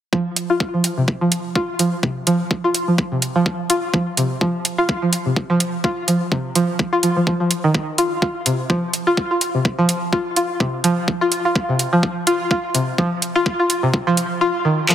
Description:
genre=minimal techno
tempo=126 BPM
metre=4/4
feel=swing 57% on 16ths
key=unclear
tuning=A4 = 439 Hz
part: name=string-like resonator pluck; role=riff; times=0.1-14.9 s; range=C3 to F4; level=-18 LUFS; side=equal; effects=chorus, sidechain pumping, dub echo
part: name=electronic kick drum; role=drums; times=0.1-14.0 s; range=none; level=-18 LUFS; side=equal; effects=overdrive, high-pass filter on kick
part: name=garage drum kit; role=drums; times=0.4-14.9 s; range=handclaps, hi-hat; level=-19 LUFS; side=right 2 dB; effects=overdrive
room=moderate lush hall reverb, RT60 1.9 s, digital ambience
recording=heavily compressed radio sound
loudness=-17 LUFS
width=side -10 dB against mid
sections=0.1-14.9 A section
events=filter sweep on synth pluck 0.1-14.9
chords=none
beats=| 0.13 0.60 1.08 1.55 | 2.03 2.51 2.98 3.46 | 3.94 4.41 4.89 5.37 | 5.84 6.32 6.79 7.27 | 7.75 8.22 8.70 9.17 | 9.65 10.13 10.60 11.08 | 11.55 12.03 12.51 12.98 | 13.46 13.94 14.41 14.89

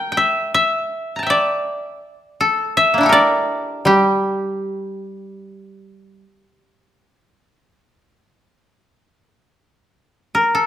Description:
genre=japanese traditional, Japanese chamber music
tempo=68-83 BPM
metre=4/4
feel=rubato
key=G kumoi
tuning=A4 = 438 Hz
part: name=koto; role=melody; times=0.0-10.7 s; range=Bb3 to Bb5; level=-16 LUFS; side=left 1 dB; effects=none
part: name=koto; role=accompaniment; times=3.9-6.2 s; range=G3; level=-19 LUFS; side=right 1 dB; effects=none
room=moderate recital hall reverb, RT60 1.4 s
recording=none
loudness=-15 LUFS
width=side -11 dB against mid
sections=0.0-9.1 A section; 9.1-10.7 B section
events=none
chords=none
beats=0.55 1.29 2.03 | 2.75 3.48 4.25 5.03 | 5.83 6.63 7.44 8.28 | 9.14 9.95

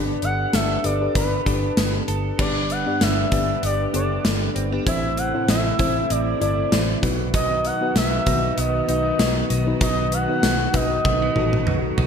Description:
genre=1980s-style pop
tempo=97 BPM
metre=4/4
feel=swing 55% on 16ths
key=unclear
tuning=A4 = 444 Hz
part: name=mellow FM electric piano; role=accompaniment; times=0.0-12.1 s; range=G2 to D5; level=-26 LUFS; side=left 4 dB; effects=chorus
part: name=direct-recorded clean electric guitar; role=riff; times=0.0-12.1 s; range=E3 to A4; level=-30 LUFS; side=right 6 dB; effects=analog chorus, digital delay
part: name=vintage muted fingered electric bass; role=bass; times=0.0-12.1 s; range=F#1 to B1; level=-26 LUFS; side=equal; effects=none
part: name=expressive portamento lead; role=melody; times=0.2-12.0 s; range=B4 to F#5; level=-25 LUFS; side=equal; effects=chorus, digital delay
part: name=gated 80s drum kit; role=drums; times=0.2-12.1 s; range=crash cymbal, hi-hat, kick drum, snare drum, toms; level=-23 LUFS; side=equal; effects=gated reverb
part: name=soft string machine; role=sustained chords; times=2.4-12.1 s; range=C3 to G4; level=-31 LUFS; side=right 1 dB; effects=ensemble chorus
room=moderate lush hall reverb, RT60 1.7 s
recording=bright 1980s-style digital production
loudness=-18 LUFS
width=side -7 dB against mid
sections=0.0-2.4 A section; 2.4-12.1 B section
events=drum fill 11.1-12.1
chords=0.0 Gadd9; 2.4 G; 4.9 Am; 7.0 B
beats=0.54 1.15 1.77 | 2.39 3.01 3.63 4.25 | 4.87 5.48 6.10 6.72 | 7.34 7.96 8.58 9.20 | 9.81 10.43 11.05 11.67

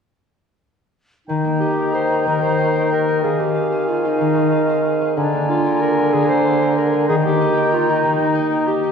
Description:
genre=classical, orchestral ballroom waltz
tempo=187 BPM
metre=3/4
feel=uneven beats, rubato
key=Eb major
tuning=A4 = 439 Hz
part: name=clear clarinet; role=second line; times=1.3-8.9 s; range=D4 to C5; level=-21 LUFS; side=equal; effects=none
part: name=silver concert flute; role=second line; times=1.3-8.7 s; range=Ab5 to Bb5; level=-26 LUFS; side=left 3 dB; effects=none
part: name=warm oboe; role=second line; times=1.3-8.7 s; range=F5 to Ab5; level=-26 LUFS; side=right 1 dB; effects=none
part: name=warm bassoon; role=accompaniment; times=1.3-8.7 s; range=D3 to Eb3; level=-20 LUFS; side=right 3 dB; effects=none
part: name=concert harp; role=arpeggios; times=1.3-8.9 s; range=D3 to F5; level=-22 LUFS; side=left 5 dB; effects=none
room=wet scoring stage reverb, RT60 1.8 s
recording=dark, warm production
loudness=-15 LUFS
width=side -6 dB against mid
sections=1.3-8.9 A section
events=none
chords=1.3 Eb; 3.2 Fm7/Eb; 5.2 Bb7/D; 7.1 Eb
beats=| 1.29 1.61 1.94 | 2.26 2.58 2.92 | 3.23 3.55 3.88 | 4.20 4.52 4.86 | 5.17 5.49 5.82 | 6.13 6.45 6.78 | 7.09 7.40 7.73 | 8.04 8.35 8.67

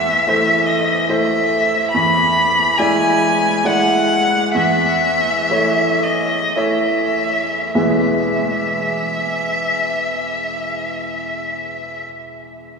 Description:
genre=classical, romantic duo for violin and grand piano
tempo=49-75 BPM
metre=3/4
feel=rubato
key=E major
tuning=A4 = 442 Hz
part: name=rich violin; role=melody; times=0.0-12.0 s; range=D#5 to B5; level=-17 LUFS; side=equal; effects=none
part: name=bright baby grand piano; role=accompaniment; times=0.0-12.8 s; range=E2 to D5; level=-19 LUFS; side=equal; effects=none
room=wet cathedral reverb, RT60 4.3 s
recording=studio ambience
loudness=-15 LUFS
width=side -5 dB against mid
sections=0.0-7.7 A section; 7.7-11.2 B section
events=slowing down 0.7-7.7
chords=0.0 Am/E; 1.9 E7; 4.5 A/E; 7.7 E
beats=0.27 1.08 | 1.93 2.78 3.63 | 4.54 5.49 6.55 | 7.74 8.92 10.08

